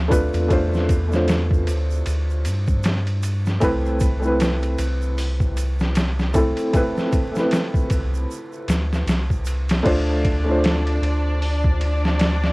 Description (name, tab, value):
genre	trip hop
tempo	77 BPM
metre	4/4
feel	swing 58% on 16ths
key	unclear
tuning	A4 = 441 Hz
part	felt-muted upright piano	accompaniment	0.0-12.5 s	A3 to C5	-24 LUFS	equal	tremolo, cassette tape, tape echo, plate reverb
part	soft dub sub bass	bass	0.0-12.5 s	C2 to G2	-22 LUFS	equal	none
part	trip hop sampler-style drum kit	drums	0.1-12.5 s	crash cymbal, hi-hat, kick drum, ride cymbal, snare drum	-22 LUFS	equal	cassette tape
part	tube shaker	percussion	0.1-9.8 s	none	-42 LUFS	right 7 dB	none
part	warm symphonic violin section	sustained chords	9.8-12.5 s	D4 to D5	-27 LUFS	equal	cassette tape
room	light reverb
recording	home recording on cassette, vinyl crackle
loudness	-18 LUFS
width	side -24 dB against mid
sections	0.0-9.9 A section; 9.9-12.5 B section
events	none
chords	0.0 Dm7; 3.6 Amadd9/C; 9.9 Dm7